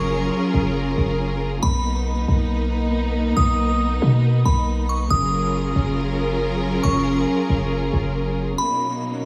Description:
hip hop, atmospheric cloud-rap; 138 BPM; 4/4; half-time; B lydian; A4 = 440 Hz
glassy synth bell; melody; 0.0-9.0 s; B5 to D#6; -29 LUFS; equal; chorus, phaser, digital delay
warm studio string section; sustained chords; 0.0-9.3 s; B2 to A#4; -25 LUFS; equal
warm 808-style bass; bass; 0.0-8.6 s; F#1 to B2; -24 LUFS; equal
light reverb, studio reverb; small room ambience; -21 LUFS; mono
0.0-8.6 A section
0.0 F#maj9; 1.6 Bmaj7; 5.1 F#maj9; 8.6 Bmaj7

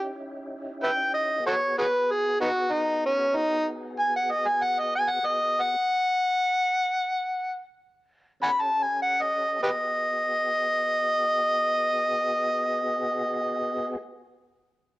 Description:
blues; 48-63 BPM (dotted quarters); 12/8; straight; G# minor; A4 = 440 Hz
overdriven harmonica; melody; 0.0-14.0 s; B3 to B5; -23 LUFS; equal
tonewheel organ; sustained chords; 0.0-14.0 s; B3 to A4; -36 LUFS; equal; slow rotary speaker, chorus vibrato, cassette tape
moderate spring reverb, RT60 1.4 s, studio reverb; home recording on cassette; -23 LUFS; side -18 dB against mid
0.0-9.6 A section; 9.6-14.6 B section
harmonica solo 0.0-9.6; slowing down 4.0-9.6
0.0 D#7b9; 1.4 G#m7; 8.4 A7; 9.6 G#m7

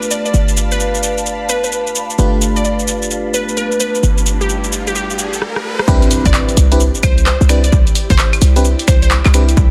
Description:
UK garage, two-step garage; 130 BPM; 4/4; swing 64% on 16ths; C major; A4 = 440 Hz
glassy wavetable pluck; melody; 0.0-9.1 s; G4 to D5; -24 LUFS; equal; chorus, dub echo
ethereal airy pad; sustained chords; 0.0-9.7 s; E4 to B5; -29 LUFS; equal; ensemble chorus, built-in reverb, phaser, sidechain pumping
FM electric piano; stabs; 0.0-9.4 s; A3 to B4; -23 LUFS; equal; chorus, dub echo
short 808-style bass; bass; 0.0-9.7 s; G1 to C2; -16 LUFS; equal; sidechain pumping
punchy analog drum machine; drums; 0.0-9.7 s; claves, finger snaps, handclaps, hi-hat, rim click, shaker; -22 LUFS; equal; studio reverb
riser and impact; sound effects; 3.9-7.7 s; -28 LUFS; equal
electronic kick drum; drums; 5.9-9.7 s; -16 LUFS; equal; studio reverb
light reverb, digital ambience; dense, heavily limited modern master; -14 LUFS; mono
0.0-5.9 A section; 5.9-9.7 B section
filter sweep on FM electric piano 0.0-5.9; riser 3.9-5.9; drum fill 5.4-5.9; drop 5.9-9.7; impact 5.9-7.7
0.0 G9; 5.9 Cmaj9

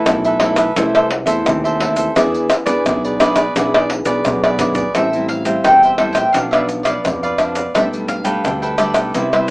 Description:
samba and choro; 86 BPM; 4/4; straight; A minor; A4 = 438 Hz
cavaquinho; accompaniment; 0.0-9.5 s; D4 to G5; -19 LUFS; right 1 dB
nylon-string guitar; accompaniment; 0.0-9.5 s; A2 to G#4; -21 LUFS; left 1 dB
overdriven fingered electric bass; bass; 0.1-9.5 s; A1 to F2; -24 LUFS; equal
egg shaker, surdo, pandeiro and tamborim; percussion; 0.1-9.5 s; -17 LUFS; equal
mandolin; melody; 5.0-9.5 s; C5 to G5; -17 LUFS; equal
moderate studio ambience, RT60 0.5 s; small speaker sound; -13 LUFS; side -24 dB against mid
0.0-5.0 A section; 5.0-9.5 B section
drum fill 4.4-5.0
0.0 Esus4/B; 0.8 Am/C; 2.2 E7; 5.0 Am7; 6.3 Bdim; 7.7 Gadd9/B

